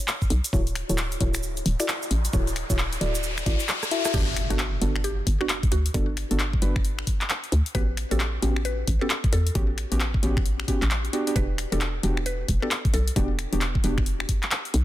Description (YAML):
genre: UK garage, two-step garage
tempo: 133 BPM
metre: 4/4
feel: swing 62% on 16ths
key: unclear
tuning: A4 = 444 Hz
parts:
  - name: punchy analog drum machine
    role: drums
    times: 0.1-14.8 s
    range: crash cymbal, finger snaps, handclaps, hi-hat, rim click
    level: -29 LUFS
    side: left 2 dB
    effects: none
  - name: cabasa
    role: percussion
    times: 0.1-4.1 s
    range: none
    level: -34 LUFS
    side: right 4 dB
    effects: none
  - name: electronic kick drum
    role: drums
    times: 0.2-14.4 s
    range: none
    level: -25 LUFS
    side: equal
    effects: none
  - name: hollow knocking FM bass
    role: bass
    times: 0.3-14.8 s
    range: D1 to E2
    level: -26 LUFS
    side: equal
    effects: none
  - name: deep mellow chord stab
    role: stabs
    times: 0.5-14.0 s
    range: B3 to E5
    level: -31 LUFS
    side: equal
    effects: chorus, vintage 12-bit sampler grit, ping-pong delay
  - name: riser and impact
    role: sound effects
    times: 1.5-5.9 s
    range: none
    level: -33 LUFS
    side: left 1 dB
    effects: none
  - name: mallet-like synth pluck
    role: melody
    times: 4.1-13.2 s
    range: F#4 to B4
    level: -35 LUFS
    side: left 1 dB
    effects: chorus, ping-pong delay
room: little or no reverb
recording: dense, heavily limited modern master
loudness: -22 LUFS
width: side -14 dB against mid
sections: 0.0-4.1 A section; 4.1-14.8 B section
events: filter sweep on synth stab 0.0-4.1; riser 1.5-4.1; kick drops out 3.7-4.1; drum fill 3.7-4.1; drop 4.1-14.8; impact 4.1-5.9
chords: 0.0 N.C.; 0.5 Dmaj9; 4.1 Gmaj9; 7.7 A13; 11.1 Em9